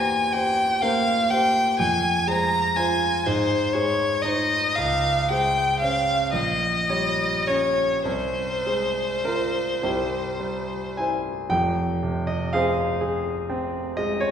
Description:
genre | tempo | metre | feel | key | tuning
classical, romantic duo for violin and grand piano | 33-42 BPM (dotted quarters) | 6/8 | rubato | F minor | A4 = 435 Hz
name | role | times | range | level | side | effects
rich violin | melody | 0.0-10.9 s | C5 to Bb5 | -22 LUFS | left 1 dB | none
clear concert grand piano | accompaniment | 0.0-14.3 s | F1 to Ab5 | -24 LUFS | right 1 dB | none
room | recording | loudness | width
wet recital hall reverb, RT60 1.7 s | recorded in a church or concert hall | -21 LUFS | side -8 dB against mid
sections
0.0-11.5 A section; 11.5-14.3 B section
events
none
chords
0.0 C7/E; 1.8 Fm; 3.2 Ab; 4.8 Db5; 6.3 Gdim/Bb; 8.1 Fm/C; 9.8 C; 11.5 Fm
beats
0.33 | 1.78 3.24 | 4.76 6.33 | 8.06 9.83 | 11.51 13.01

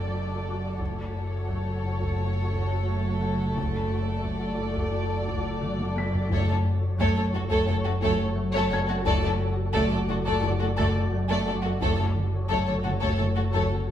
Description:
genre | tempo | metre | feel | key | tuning
cinematic, suspense film score | 87 BPM | 4/4 | straight | F# minor | A4 = 440 Hz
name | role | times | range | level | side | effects
rich studio violin section | melody | 0.0-13.7 s | A4 to D5 | -35 LUFS | left 3 dB | none
warm studio violin section | second line | 0.0-13.7 s | F#4 to A4 | -32 LUFS | left 2 dB | none
rich studio viola section | accompaniment | 0.0-13.7 s | A3 | -32 LUFS | right 2 dB | none
flickering grainy texture | sustained chords | 0.0-13.9 s | F#4 to D5 | -35 LUFS | equal | built-in reverb
warm studio cello section | bass | 0.0-13.6 s | F#2 | -34 LUFS | right 1 dB | none
warm studio double bass section | bass | 0.0-13.6 s | F#1 | -35 LUFS | right 2 dB | none
deep rumbling drone | drone | 0.0-13.9 s | F#1 | -37 LUFS | equal | built-in reverb
felt-muted upright piano | texture | 0.0-13.9 s | G#6 to B6 | -40 LUFS | left 1 dB | none
folk marimba with soft mallets | riff | 0.1-13.9 s | F#2 to F#3 | -29 LUFS | left 1 dB | none
taiko ensemble | drums | 0.8-13.9 s | none | -33 LUFS | equal | none
timpani | percussion | 3.6-7.3, 11.8-12.8 s | F#2 | -35 LUFS | equal | none
room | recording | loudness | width
wet recital hall reverb, RT60 1.4 s | recorded in a church or concert hall | -24 LUFS | side -10 dB against mid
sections
0.0-13.9 A section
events
drum fill 5.6-6.3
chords
0.0 D/F#; 0.8 F#m; 3.6 D/F#; 6.3 F#m; 9.1 D/F#; 11.8 F#m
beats
0.10 | 0.80 1.49 2.19 2.89 | 3.57 4.26 4.94 5.63 | 6.31 7.00 7.69 8.37 | 9.06 9.75 10.44 11.12 | 11.81 12.51 13.20 13.89

